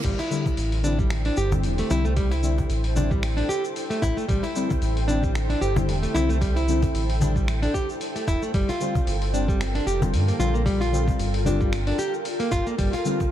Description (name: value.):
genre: organic downtempo.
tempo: 113 BPM.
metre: 4/4.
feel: swing 55% on 16ths.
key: unclear.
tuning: A4 = 440 Hz.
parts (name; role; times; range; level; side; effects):
deep mellow chord stab; accompaniment; 0.0-13.2 s; D3 to F4; -30 LUFS; left 3 dB; chorus, phaser, sidechain pumping, tape echo.
ethereal airy pad; sustained chords; 0.7-13.3 s; E4 to A5; -32 LUFS; equal; ensemble chorus, built-in reverb, sidechain pumping.
nylon-string guitar; arpeggios; 0.0-13.3 s; G3 to G4; -27 LUFS; equal; tape echo.
round analog bass; bass; 0.0-12.9 s; E1 to G2; -24 LUFS; equal; none.
dusty soul sampler-style drum kit; drums; 0.0-13.3 s; cabasa, crash cymbal, finger snaps, hi-hat; -36 LUFS; left 2 dB; none.
electronic kick drum; drums; 0.0-13.3 s; none; -26 LUFS; equal; none.
cajon; percussion; 0.2-13.3 s; none; -29 LUFS; left 2 dB; none.
room: light reverb.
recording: dark, warm production.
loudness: -21 LUFS.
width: side -11 dB against mid.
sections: 0.0-13.3 A section.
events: none.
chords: 0.0 Am7; 8.5 Gm9.